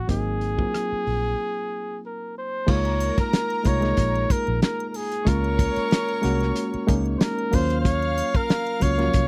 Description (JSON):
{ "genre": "lush 1970s-style soul", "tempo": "93 BPM", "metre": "4/4", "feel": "swing 54% on 16ths", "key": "Db major", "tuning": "A4 = 441 Hz", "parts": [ { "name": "warm flugelhorn", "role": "melody", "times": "0.0-9.3 s", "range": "Ab4 to Db5", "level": "-29 LUFS", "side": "equal", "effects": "none" }, { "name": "reed electric piano", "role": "accompaniment", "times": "0.0-9.3 s", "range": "F3 to Ab4", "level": "-30 LUFS", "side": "equal", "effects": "none" }, { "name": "vintage muted fingered electric bass", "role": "bass", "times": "0.0-9.3 s", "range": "Ab1 to Eb2", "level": "-28 LUFS", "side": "equal", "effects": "none" }, { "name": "warm soul drum kit", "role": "drums", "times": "0.1-9.3 s", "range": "crash cymbal, hi-hat, kick drum, rim click, snare drum", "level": "-25 LUFS", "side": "equal", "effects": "none" }, { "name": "warm chamber string section", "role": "second line", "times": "2.7-9.3 s", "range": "Bb4 to F6", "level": "-37 LUFS", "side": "equal", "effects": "none" }, { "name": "triangle", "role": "percussion", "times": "2.7-9.3 s", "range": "none", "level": "-46 LUFS", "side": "equal", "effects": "none" } ], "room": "little or no reverb", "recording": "dry, close 1970s-style studio recording", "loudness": "-23 LUFS", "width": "mono", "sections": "0.0-2.7 A section; 2.7-9.3 B section", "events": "break 1.4-2.7", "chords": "0.1 Ab7; 2.7 Db69; 5.3 Gbmaj7; 7.5 Ebm7" }